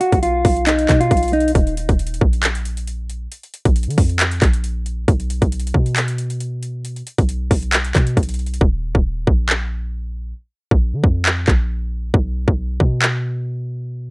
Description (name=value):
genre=hip hop, trap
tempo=136 BPM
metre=4/4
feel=half-time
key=unclear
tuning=A4 = 440 Hz
part: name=mellow electric guitar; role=melody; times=0.0-1.5 s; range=D#4 to F#4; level=-17 LUFS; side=equal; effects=digital delay
part: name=trap drum kit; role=drums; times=0.0-13.1 s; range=handclaps, hi-hat, kick drum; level=-16 LUFS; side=equal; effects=overdrive, vintage 12-bit sampler grit
part: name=warm 808-style bass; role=bass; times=0.1-14.1 s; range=Eb1 to D3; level=-20 LUFS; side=equal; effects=none
room=little or no reverb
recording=rough home demo mix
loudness=-16 LUFS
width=side -26 dB against mid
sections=0.0-14.1 A section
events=break 1.6-8.6; hi-hats muted 8.6-14.1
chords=0.0 B; 1.6 Eb5; 3.3 Bb5; 5.1 N.C.; 8.6 Eb5; 10.4 Bb5; 12.1 N.C.